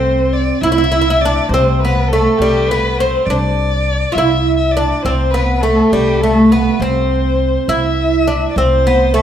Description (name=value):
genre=Persian modal ensemble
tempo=68 BPM (dotted quarters)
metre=6/8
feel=straight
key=C dastgah mahur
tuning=A4 = 440 Hz
part: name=oud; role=melody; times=0.0-9.2 s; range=G3 to F4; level=-14 LUFS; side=right 2 dB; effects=none
part: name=warm violin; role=second line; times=0.0-9.2 s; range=G4 to E5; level=-18 LUFS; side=left 3 dB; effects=none
part: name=upright bass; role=bass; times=0.0-9.2 s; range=C2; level=-17 LUFS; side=equal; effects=none
room=wet recital hall reverb, RT60 1.6 s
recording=none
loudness=-12 LUFS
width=side -9 dB against mid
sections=0.0-9.2 A section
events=none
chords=none